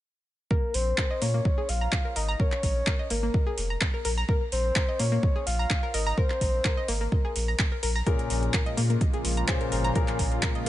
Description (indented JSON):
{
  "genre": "progressive house",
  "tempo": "127 BPM",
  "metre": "4/4",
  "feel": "straight",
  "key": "Bb minor",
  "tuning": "A4 = 440 Hz",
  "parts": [
    { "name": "soft octave-layered synth lead", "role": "melody", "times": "0.5-7.6 s", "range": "Bb4 to F5", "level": "-31 LUFS", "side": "left 2 dB", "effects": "chorus, digital delay" },
    { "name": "analog pluck", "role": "arpeggios", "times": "0.5-10.7 s", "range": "Bb3 to Bb5", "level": "-34 LUFS", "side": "left 1 dB", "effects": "chorus, cassette tape, sidechain pumping, ping-pong delay" },
    { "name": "electronic kick drum", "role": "drums", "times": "0.5-10.5 s", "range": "none", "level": "-26 LUFS", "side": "equal", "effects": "none" },
    { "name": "saturated sub bass", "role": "bass", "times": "0.7-10.7 s", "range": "F1 to Bb2", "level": "-28 LUFS", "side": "equal", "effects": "sidechain pumping" },
    { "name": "deep house drum kit", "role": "drums", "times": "0.7-10.7 s", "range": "handclaps, hi-hat", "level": "-31 LUFS", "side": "equal", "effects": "sidechain pumping on hats" },
    { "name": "lush unison pad", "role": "sustained chords", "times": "8.1-10.7 s", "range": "Db3 to F4", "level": "-33 LUFS", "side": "right 1 dB", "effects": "chorus, sidechain pumping" },
    { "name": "dark baby grand piano", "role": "stabs", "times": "8.1-10.7 s", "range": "Bb2 to C5", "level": "-30 LUFS", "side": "left 4 dB", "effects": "sidechain pumping, ping-pong delay" }
  ],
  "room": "little or no reverb",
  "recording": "nothing above 10.4 kHz",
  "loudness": "-24 LUFS",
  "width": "side -14 dB against mid",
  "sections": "0.5-10.7 A section",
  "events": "none",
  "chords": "0.5 Bbm; 4.3 N.C.; 8.1 Bbm7"
}